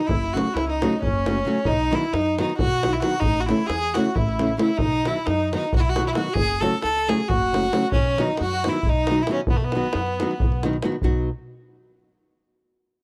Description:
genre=balkan folk, Balkan wedding band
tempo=268 BPM (eighths)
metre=7/8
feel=straight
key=B mixolydian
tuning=A4 = 439 Hz
part: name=clear violin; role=melody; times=0.0-10.7 s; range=A3 to A4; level=-27 LUFS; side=equal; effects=none
part: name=accordion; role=second line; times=0.0-10.7 s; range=A3 to A4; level=-31 LUFS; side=equal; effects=none
part: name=davul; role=percussion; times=0.0-11.3 s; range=none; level=-29 LUFS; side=equal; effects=none
part: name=upright bass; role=bass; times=0.1-11.3 s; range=F#1 to F#2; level=-29 LUFS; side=equal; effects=none
part: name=nylon-string guitar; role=accompaniment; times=0.3-11.3 s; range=C#3 to F#4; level=-27 LUFS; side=equal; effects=none
room=studio ambience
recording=dry, close 1970s-style studio recording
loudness=-22 LUFS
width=mono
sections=0.0-11.0 A section; 11.0-12.6 B section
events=none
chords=0.1 F#m; 1.7 B; 3.2 A; 4.8 B; 6.4 F#m; 7.9 B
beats=| 0.09 0.31 0.54 0.76 0.98 1.21 1.43 | 1.66 1.88 2.10 2.33 2.55 2.77 3.00 | 3.22 3.45 3.67 3.89 4.12 4.34 4.57 | 4.79 5.01 5.24 5.46 5.68 5.91 6.13 | 6.36 6.58 6.80 7.03 7.25 7.47 7.70 | 7.92 8.14 8.37 8.59 8.81 9.04 9.26 | 9.48 9.70 9.93 10.15 10.37 10.59 10.82 | 11.04 11.26

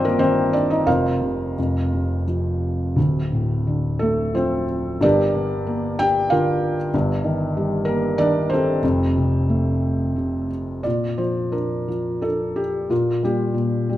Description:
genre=classical, lyrical solo piano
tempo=85-96 BPM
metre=3/4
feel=rubato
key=Bb major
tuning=A4 = 444 Hz
part: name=felt-muted upright piano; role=solo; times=0.0-14.0 s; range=D1 to G5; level=-19 LUFS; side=equal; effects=none
room=moderate recital hall reverb, RT60 1.5 s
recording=minimal, uncompressed stereo recording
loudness=-19 LUFS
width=side -14 dB against mid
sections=0.0-10.9 A section; 10.9-14.0 B section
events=none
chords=0.0 Cm/G; 0.9 Fsus4; 3.0 Dm; 5.0 Gm; 6.9 Eb/G; 8.8 Fadd9; 10.9 Bb; 12.9 Gm/Bb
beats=0.19 | 0.87 1.57 2.27 | 2.97 3.66 4.34 | 5.01 5.67 6.31 | 6.93 7.56 8.19 | 8.83 9.49 10.17 | 10.85 11.54 12.24 | 12.91 13.57

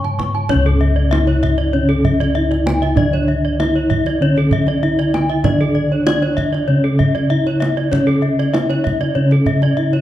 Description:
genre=Balinese gamelan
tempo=97 BPM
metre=4/4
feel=straight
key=C# pelog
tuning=A4 = 440 Hz
part: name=gamelan-type bronze metallophone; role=melody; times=0.0-10.0 s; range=C#4 to C#5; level=-20 LUFS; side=equal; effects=none
part: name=gamelan-type bronze metallophone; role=accompaniment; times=0.0-10.0 s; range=C#3 to D3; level=-22 LUFS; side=equal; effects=none
part: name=gamelan-type bronze metallophone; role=arpeggios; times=0.0-9.9 s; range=C#5 to C#6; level=-23 LUFS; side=left 5 dB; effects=none
part: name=gamelan-type bronze metallophone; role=arpeggios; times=0.0-10.0 s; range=A4-40c to A5-40c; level=-25 LUFS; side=right 5 dB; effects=none
part: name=gamelan-type bossed gongs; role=bass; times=0.0-10.0 s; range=C#2 to D4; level=-19 LUFS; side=equal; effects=none
part: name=kendang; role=percussion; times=0.0-10.0 s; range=none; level=-23 LUFS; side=right 2 dB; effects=none
room=wet recital hall reverb, RT60 1.5 s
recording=dark, warm production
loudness=-13 LUFS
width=side -13 dB against mid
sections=0.5-10.0 A section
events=none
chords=none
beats=| 0.50 1.11 1.73 2.35 | 2.97 3.59 4.21 4.83 | 5.44 6.06 6.68 7.30 | 7.92 8.54 9.15 9.77

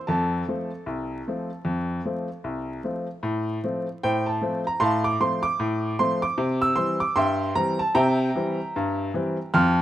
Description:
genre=ragtime piano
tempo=76 BPM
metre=2/4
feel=swing 59% on 16ths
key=F major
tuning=A4 = 439 Hz
part: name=clear upright piano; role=solo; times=0.0-9.8 s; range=C2 to F6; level=-22 LUFS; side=equal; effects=none
room=light reverb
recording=rough home demo mix, vinyl crackle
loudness=-23 LUFS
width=side -13 dB against mid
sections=0.0-3.2 A section; 3.2-9.8 A section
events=none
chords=0.1 F; 3.2 F/A; 6.4 C7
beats=| 0.07 0.86 | 1.66 2.45 | 3.25 4.04 | 4.83 5.61 | 6.40 7.18 | 7.97 8.76 | 9.54

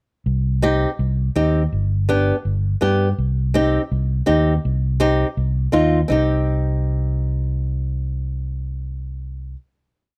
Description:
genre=latin, cumbia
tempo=165 BPM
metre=4/4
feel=straight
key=C harmonic minor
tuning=A4 = 440 Hz
part: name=fingered electric bass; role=bass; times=0.3-9.5 s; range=G1 to G2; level=-22 LUFS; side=equal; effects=none
part: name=flamenco guitar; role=accompaniment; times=0.6-9.6 s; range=B3 to G4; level=-22 LUFS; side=equal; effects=none
room=little or no reverb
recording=close, detailed microphones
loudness=-20 LUFS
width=mono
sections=0.3-6.1 A section; 6.1-9.0 final chord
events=none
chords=0.3 Cm; 1.7 G; 3.2 Cm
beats=| 0.27 0.63 1.00 1.36 | 1.73 2.09 2.46 2.82 | 3.19 3.55 3.92 4.28 | 4.65 5.01 5.37 5.74 | 6.10 6.47 6.83 7.20 | 7.56 7.92 8.29 8.65

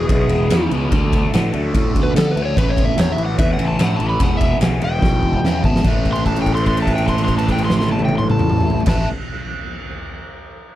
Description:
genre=blues rock power trio and southern rock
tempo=146 BPM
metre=4/4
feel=straight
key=A major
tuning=A4 = 440 Hz
part: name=overdriven slide guitar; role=melody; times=0.0-9.1 s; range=G#4 to C6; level=-23 LUFS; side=left 1 dB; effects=none
part: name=overdriven tonewheel organ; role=sustained chords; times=0.0-9.1 s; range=E3 to Bb4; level=-32 LUFS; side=right 3 dB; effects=none
part: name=overdriven electric guitar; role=riff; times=0.0-9.1 s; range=E2 to B3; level=-23 LUFS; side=left 1 dB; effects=phaser
part: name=fuzz picked electric bass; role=bass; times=0.0-9.0 s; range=E1 to D3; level=-20 LUFS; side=equal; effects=overdrive
part: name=oversized low-tuned drum kit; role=drums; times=0.1-9.0 s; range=crash cymbal, kick drum, ride cymbal, snare drum, toms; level=-19 LUFS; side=equal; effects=none
room=little or no reverb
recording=none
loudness=-15 LUFS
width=side -14 dB against mid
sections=0.0-5.8 A section; 5.8-9.1 B section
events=drum fill 5.0-5.8; held note 5.8-8.9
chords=0.0 E; 0.9 D; 2.6 A; 4.2 E; 5.8 A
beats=0.09 0.51 | 0.92 1.33 1.74 2.15 | 2.57 2.98 3.39 3.80 | 4.21 4.62 5.03 5.44 | 5.85 6.26 6.67 7.08 | 7.48 7.89 8.30 8.71

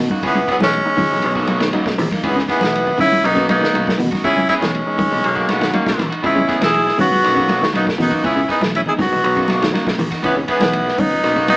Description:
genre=afrobeat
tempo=120 BPM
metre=4/4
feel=straight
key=unclear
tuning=A4 = 439 Hz
part: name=overdriven reed electric piano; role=accompaniment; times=0.0-11.5 s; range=E3 to D#5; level=-26 LUFS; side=equal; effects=none
part: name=fingered electric bass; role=bass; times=0.0-11.6 s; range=A#1 to C#3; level=-23 LUFS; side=equal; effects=none
part: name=vintage drum kit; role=drums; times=0.0-11.6 s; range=hi-hat, kick drum, ride cymbal, snare drum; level=-24 LUFS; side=equal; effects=none
part: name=electric guitar at the edge of break-up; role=stabs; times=0.1-11.6 s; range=E3 to G#4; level=-24 LUFS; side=right 1 dB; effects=none
part: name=congas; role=percussion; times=0.1-11.6 s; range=none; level=-24 LUFS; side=equal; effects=none
part: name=bright tenor saxophone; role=melody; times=0.3-11.6 s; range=B3 to G#4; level=-18 LUFS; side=equal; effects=none
part: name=growling alto saxophone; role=second line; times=0.3-11.6 s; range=E3 to E4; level=-23 LUFS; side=equal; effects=none
part: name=electric guitar at the edge of break-up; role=arpeggios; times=0.3-11.6 s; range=C#3 to E3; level=-25 LUFS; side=left 1 dB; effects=none
part: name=raspy baritone saxophone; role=second line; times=5.2-6.1 s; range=A#3 to B3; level=-23 LUFS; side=left 1 dB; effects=none
room=moderate stone room reverb, RT60 1.1 s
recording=band playing live in one room, small speaker sound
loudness=-14 LUFS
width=side -24 dB against mid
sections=0.0-11.6 A section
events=none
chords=0.2 C#m7; 1.2 Bmaj7; 2.2 C#m7; 3.2 Bmaj7; 4.2 C#m7; 5.2 Bmaj7; 6.2 C#m7; 7.2 Bmaj7; 8.2 C#m7; 9.2 Bmaj7; 10.2 C#m7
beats=| 0.23 0.73 1.24 1.74 | 2.24 2.74 3.24 3.74 | 4.24 4.74 5.24 5.74 | 6.24 6.74 7.24 7.74 | 8.24 8.74 9.24 9.74 | 10.24 10.74 11.24

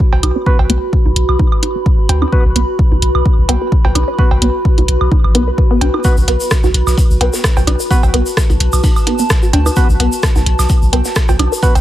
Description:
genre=minimal techno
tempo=129 BPM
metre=4/4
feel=swing 55% on 16ths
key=unclear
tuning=A4 = 441 Hz
part: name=electronic kick drum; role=drums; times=0.0-11.7 s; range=none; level=-13 LUFS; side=equal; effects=none
part: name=warbly tape-like pad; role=texture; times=0.0-11.8 s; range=F#4 to B5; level=-20 LUFS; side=right 1 dB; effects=chorus, built-in reverb, sidechain pumping
part: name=resonant blip pluck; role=riff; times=0.1-11.6 s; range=B3 to B4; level=-20 LUFS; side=equal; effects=phaser, sidechain pumping, dub echo
part: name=punchy sub bass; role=bass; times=0.1-11.8 s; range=A1 to D2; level=-14 LUFS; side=equal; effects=sidechain pumping
part: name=cowbell, bongos and woodblock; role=percussion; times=0.1-11.8 s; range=none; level=-23 LUFS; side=right 5 dB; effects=digital delay
part: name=garage drum kit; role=drums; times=0.2-11.8 s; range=hi-hat, rim click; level=-17 LUFS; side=equal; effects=none
part: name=percussive organ stab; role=stabs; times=0.5-11.7 s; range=B3 to B4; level=-20 LUFS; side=right 2 dB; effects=chorus, digital delay
part: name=dusty soul sampler-style drum kit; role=drums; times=6.0-11.7 s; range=hi-hat, snare drum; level=-27 LUFS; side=equal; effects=high-pass filter on snare, high-pass filter on hats
part: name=tube shaker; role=percussion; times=6.0-11.8 s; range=none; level=-26 LUFS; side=left 3 dB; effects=none
room=digital ambience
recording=none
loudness=-10 LUFS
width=side -13 dB against mid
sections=0.0-11.8 A section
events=filter sweep on synth arpeggio sound 0.0-11.8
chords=0.0 B5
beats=0.00 | 0.46 0.93 1.39 1.86 | 2.32 2.79 3.25 3.72 | 4.18 4.65 5.12 5.58 | 6.04 6.51 6.98 7.44 | 7.91 8.37 8.84 9.30 | 9.77 10.23 10.70 11.16 | 11.63

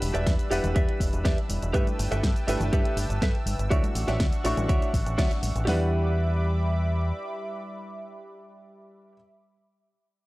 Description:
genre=nu-disco, nu disco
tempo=122 BPM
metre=4/4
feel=straight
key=E dorian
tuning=A4 = 440 Hz
part: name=clear concert grand piano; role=accompaniment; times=0.0-9.2 s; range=G3 to C#6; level=-33 LUFS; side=equal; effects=analog delay
part: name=lush unison pad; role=sustained chords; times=0.0-9.1 s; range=G3 to E6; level=-37 LUFS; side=equal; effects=chorus, sidechain pumping
part: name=direct-recorded clean electric guitar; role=riff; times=0.0-9.2 s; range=F#4 to E5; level=-32 LUFS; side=right 2 dB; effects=wide subtle chorus, analog delay
part: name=deep dub fingered electric bass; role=bass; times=0.0-7.1 s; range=E1 to G2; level=-27 LUFS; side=equal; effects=sidechain pumping
part: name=pop drum kit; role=drums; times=0.0-5.7 s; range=hi-hat, shaker, snare drum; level=-34 LUFS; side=equal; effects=none
part: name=pop drum kit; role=drums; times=0.3-5.8 s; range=hi-hat, kick drum, snare drum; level=-25 LUFS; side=equal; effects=none
part: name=congas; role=percussion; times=0.6-5.5 s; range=none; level=-37 LUFS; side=left 1 dB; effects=none
room=little or no reverb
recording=dry, gritty hardware recording, cassette tape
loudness=-23 LUFS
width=side -19 dB against mid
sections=0.0-5.7 A section; 5.7-9.6 B section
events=drop 0.0-5.7; band accent 5.2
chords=0.0 Em7; 1.7 G69; 3.7 Dmaj9; 5.7 Em7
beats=0.27 0.76 1.25 | 1.74 2.23 2.73 3.22 | 3.71 4.20 4.69 5.18 | 5.68 6.17 6.66 7.15 | 7.64 8.14 8.63 9.12

